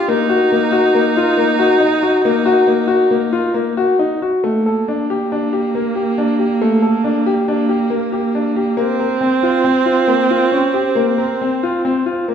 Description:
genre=contemporary instrumental, chamber music in an uneven meter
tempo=138 BPM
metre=5/4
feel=straight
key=G minor from 4.4 s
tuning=A4 = 440 Hz
part: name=warm viola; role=second line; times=0.0-12.3 s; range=Bb3 to Eb4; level=-18 LUFS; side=right 5 dB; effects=none
part: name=clear concert grand piano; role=arpeggios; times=0.0-12.3 s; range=A3 to Bb4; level=-15 LUFS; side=left 3 dB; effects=none
room=wet recital hall reverb, RT60 1.6 s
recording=minimal, uncompressed stereo recording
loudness=-13 LUFS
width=side -8 dB against mid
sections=0.0-4.4 A section; 4.4-12.3 B section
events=none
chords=0.1 Ebm; 4.4 Gmadd9; 8.8 Bbsus2

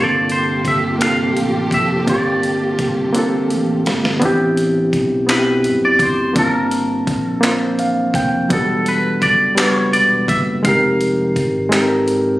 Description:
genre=slow six-eight R&B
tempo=56 BPM (dotted quarters)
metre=6/8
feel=straight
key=unclear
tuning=A4 = 441 Hz
part: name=twangy electric guitar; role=melody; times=0.0-12.4 s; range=A4 to F5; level=-18 LUFS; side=equal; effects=slapback echo, plate reverb
part: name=bright reed electric piano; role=accompaniment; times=0.0-12.4 s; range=F#3 to A5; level=-16 LUFS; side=equal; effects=none
part: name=warm symphonic string section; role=sustained chords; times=0.0-4.2 s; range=C3 to A4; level=-24 LUFS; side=left 1 dB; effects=none
part: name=smooth synth bass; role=bass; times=0.0-12.4 s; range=E1 to B1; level=-25 LUFS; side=equal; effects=none
part: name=dusty soul sampler-style drum kit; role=drums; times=0.3-12.2 s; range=finger snaps, handclaps, hi-hat, kick drum, snare drum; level=-22 LUFS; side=equal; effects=none
room=light reverb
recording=recorded on a phone in the room, studio reverb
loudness=-14 LUFS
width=side -17 dB against mid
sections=0.0-4.2 A section; 4.2-12.4 B section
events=drum fill 3.1-4.2; reed electric piano fill 7.4-8.5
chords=0.0 Gm11; 4.2 Am11; 6.4 Gm11; 8.5 Em11; 10.6 Fm11

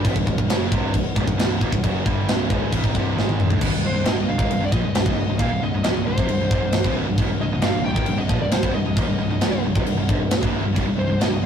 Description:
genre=heavy metal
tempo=134 BPM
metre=4/4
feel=straight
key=C minor from 3.6 s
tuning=A4 = 439 Hz
part: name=heavy high-gain guitar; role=riff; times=0.0-11.5 s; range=C2 to Ab3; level=-30 LUFS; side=left 6 dB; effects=distortion
part: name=heavy high-gain guitar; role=riff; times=0.0-11.5 s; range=C2 to Ab3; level=-27 LUFS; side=right 2 dB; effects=distortion
part: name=thick fuzz guitar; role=riff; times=0.0-11.4 s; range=C2 to Ab3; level=-30 LUFS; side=equal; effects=none
part: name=overdriven picked electric bass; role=bass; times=0.0-11.5 s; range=C1 to Bb1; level=-26 LUFS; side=equal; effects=none
part: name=tight metal drum kit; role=drums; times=0.0-11.3 s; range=crash cymbal, kick drum, snare drum, toms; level=-22 LUFS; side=equal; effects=none
part: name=high-gain lead guitar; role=melody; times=3.9-11.5 s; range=C5 to G5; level=-28 LUFS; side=equal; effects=distortion
room=moderate booth ambience, RT60 0.2 s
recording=rough rehearsal-room recording, warm saturation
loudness=-18 LUFS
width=side -8 dB against mid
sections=0.0-3.6 A section; 3.6-11.5 B section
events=drum fill 3.2-3.6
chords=0.0 Cm

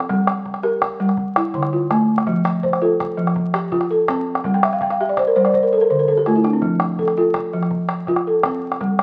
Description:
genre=west african traditional, West African string and xylophone music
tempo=110 BPM (dotted quarters)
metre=12/8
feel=straight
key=F major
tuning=A4 = 441 Hz
part: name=balafon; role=arpeggios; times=0.0-9.0 s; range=D3 to G5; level=-20 LUFS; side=equal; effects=none
part: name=calabash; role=percussion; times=0.0-9.0 s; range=none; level=-26 LUFS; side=equal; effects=none
room=moderate large studio reverb, RT60 1.1 s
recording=very old 78 rpm record, vinyl crackle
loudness=-19 LUFS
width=mono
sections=0.0-6.6 A section; 6.6-9.0 B section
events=balafon fill 4.5-6.6; drum fill 5.7-6.6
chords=0.1 Gm; 1.2 Dm; 2.3 F; 4.4 N.C.; 5.5 D5; 6.6 F

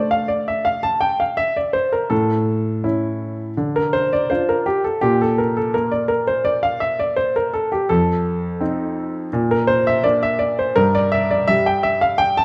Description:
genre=classical-period piano sonatina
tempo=83 BPM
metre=4/4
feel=straight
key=D minor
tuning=A4 = 440 Hz
part: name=clear grand piano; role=solo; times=0.0-12.4 s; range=F2 to A5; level=-19 LUFS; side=equal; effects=none
room=wet recital hall reverb, RT60 1.4 s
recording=none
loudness=-19 LUFS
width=mono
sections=0.0-12.4 A section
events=none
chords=0.0 D5; 2.1 A; 3.6 Dm; 5.0 N.C.; 7.9 F7; 9.3 Bb; 10.8 N.C.

